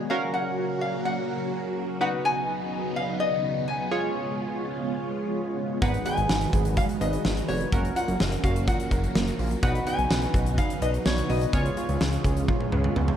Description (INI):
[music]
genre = synth-pop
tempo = 126 BPM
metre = 4/4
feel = straight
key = Db mixolydian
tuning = A4 = 439 Hz
[part]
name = funky polysynth comp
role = accompaniment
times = 0.0-13.2 s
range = Db4 to Db5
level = -32 LUFS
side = right 1 dB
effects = chorus, dub echo
[part]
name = string machine, cellos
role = sustained chords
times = 0.0-13.2 s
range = Db3 to Gb4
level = -31 LUFS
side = right 1 dB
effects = phaser, ensemble chorus
[part]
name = lap resonator guitar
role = melody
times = 0.1-12.4 s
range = Db5 to Ab5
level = -30 LUFS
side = left 2 dB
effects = dub echo
[part]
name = soft round pluck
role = arpeggios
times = 5.8-13.1 s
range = Bb3 to Cb5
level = -34 LUFS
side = right 5 dB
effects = chorus, dub echo
[part]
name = fat analog bass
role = bass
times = 5.8-13.1 s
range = F1 to Db2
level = -27 LUFS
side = equal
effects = none
[part]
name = huge arena drum kit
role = drums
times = 5.8-13.2 s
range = hi-hat, kick drum, snare drum, toms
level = -27 LUFS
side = equal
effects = none
[sound]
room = light reverb, small room ambience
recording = echo-heavy mix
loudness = -23 LUFS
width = side -9 dB against mid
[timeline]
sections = 0.0-13.2 A section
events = drum fill 12.5-13.2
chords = 0.1 Gb; 2.0 Cbadd9; 3.9 Db7; 5.8 Abm7; 7.7 Gbmaj7; 9.6 Cbadd9; 11.5 Db7